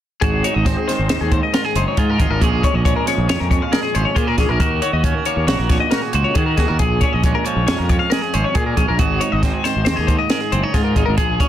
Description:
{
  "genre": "math rock and midwest emo",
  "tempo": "137 BPM",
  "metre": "5/4",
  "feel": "straight",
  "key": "unclear",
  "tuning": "A4 = 445 Hz",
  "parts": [
    { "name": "clean electric guitar", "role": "accompaniment", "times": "0.2-11.5 s", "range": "F2 to Ab4", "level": "-22 LUFS", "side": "right 8 dB", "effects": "none" },
    { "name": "twelve-string electric guitar", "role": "arpeggios", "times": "0.2-11.5 s", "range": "Ab4 to F5", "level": "-22 LUFS", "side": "left 10 dB", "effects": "lush chorus" },
    { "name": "fuzz fingered electric bass", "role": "bass", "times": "0.2-11.4 s", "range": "Gb1 to Eb3", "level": "-20 LUFS", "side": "equal", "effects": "overdrive" },
    { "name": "compact cocktail drum kit", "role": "drums", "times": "0.2-11.5 s", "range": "hi-hat, kick drum, snare drum", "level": "-19 LUFS", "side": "equal", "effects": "none" }
  ],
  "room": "little or no reverb",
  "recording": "dense, heavily limited modern master",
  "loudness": "-15 LUFS",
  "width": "side -11 dB against mid",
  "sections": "0.2-11.5 A section",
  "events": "none",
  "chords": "0.2 Ab7; 2.4 Bbm7; 4.6 Ebm7; 6.8 Bbm7; 9.0 Ab7"
}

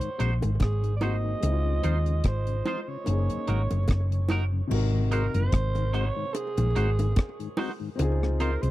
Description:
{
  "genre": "lovers rock reggae",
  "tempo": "73 BPM",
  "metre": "4/4",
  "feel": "swing 55% on 16ths",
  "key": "unclear",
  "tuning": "A4 = 440 Hz",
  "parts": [
    { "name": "growling alto saxophone", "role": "melody", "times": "0.0-8.7 s", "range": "Ab4 to Eb5", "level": "-34 LUFS", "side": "right 4 dB", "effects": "tape echo" },
    { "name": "dark concert grand piano", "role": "accompaniment", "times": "0.0-8.7 s", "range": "C3 to Bb4", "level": "-34 LUFS", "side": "left 3 dB", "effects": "slapback echo" },
    { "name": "mellow tonewheel organ", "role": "accompaniment", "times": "0.0-8.7 s", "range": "Gb2 to Gb4", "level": "-36 LUFS", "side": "left 6 dB", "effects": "overdrive, chorus vibrato, slow rotary speaker" },
    { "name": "deep reggae drum kit", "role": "drums", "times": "0.0-8.7 s", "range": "crash cymbal, hi-hat, kick drum, rim click", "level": "-27 LUFS", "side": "equal", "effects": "none" },
    { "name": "twangy electric guitar", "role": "stabs", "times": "0.2-8.5 s", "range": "Eb4 to C5", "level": "-34 LUFS", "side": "right 4 dB", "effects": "lush chorus" },
    { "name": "hollow-body short-scale fingered electric bass", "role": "bass", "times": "0.2-8.7 s", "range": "Gb1 to Eb2", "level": "-25 LUFS", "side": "equal", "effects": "none" },
    { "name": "bongos", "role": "percussion", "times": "0.4-8.2 s", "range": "none", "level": "-34 LUFS", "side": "right 2 dB", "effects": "slapback echo" }
  ],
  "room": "small room ambience",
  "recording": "dry, close 1970s-style studio recording",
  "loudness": "-24 LUFS",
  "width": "side -16 dB against mid",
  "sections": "0.0-4.7 A section; 4.7-8.7 B section",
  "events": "none",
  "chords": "0.0 Ab7; 1.4 Dbmaj9; 3.1 Gb6; 4.7 Ab7; 8.0 Dbmaj9"
}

